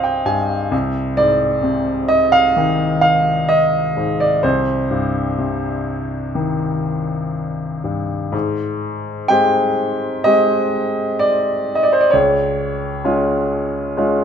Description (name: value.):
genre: classical, lyrical solo piano.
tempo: 63 BPM.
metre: 4/4.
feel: uneven beats, rubato.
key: unclear.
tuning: A4 = 445 Hz.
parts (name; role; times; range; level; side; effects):
clear grand piano; solo; 0.0-14.2 s; C2 to Ab5; -15 LUFS; equal; none.
room: moderate recital hall reverb, RT60 1.8 s.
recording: minimal, uncompressed stereo recording.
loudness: -15 LUFS.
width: side -8 dB against mid.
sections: 0.0-8.3 A section; 8.3-14.2 B section.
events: grand piano fill 0.0-0.7.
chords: 0.0 Cmadd11; 0.7 Ab6/C; 4.4 Cm; 8.3 Abmaj7; 12.1 Db.